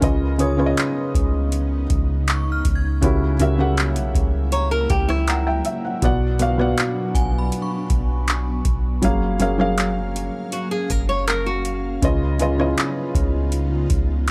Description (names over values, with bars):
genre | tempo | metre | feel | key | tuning
contemporary R&B | 80 BPM | 4/4 | straight | F# major | A4 = 440 Hz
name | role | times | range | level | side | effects
felt-muted upright piano | accompaniment | 0.0-14.3 s | B2 to A#5 | -25 LUFS | equal | none
ethereal airy pad | sustained chords | 0.0-14.3 s | C#3 to E#5 | -33 LUFS | equal | ensemble chorus, built-in reverb, sidechain pumping
soft 808-style bass | bass | 0.0-14.3 s | F#1 to C#2 | -24 LUFS | equal | none
booming analog drum machine | drums | 0.0-14.3 s | handclaps, hi-hat, kick drum, rim click | -24 LUFS | equal | none
synth chime | texture | 0.0-9.6 s | G#5 to G#6 | -37 LUFS | equal | ensemble chorus, phaser, tape echo
flamenco guitar | arpeggios | 4.5-6.0, 10.5-12.0 s | E4 to C#5 | -27 LUFS | equal | tape echo
room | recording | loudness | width
little or no reverb | dry, gritty hardware recording | -21 LUFS | mono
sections
0.0-14.3 A section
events
felt piano fill 4.5-6.0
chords
0.0 C#9; 3.0 F#7b9; 6.0 Bm; 9.0 F#maj7; 12.0 C#9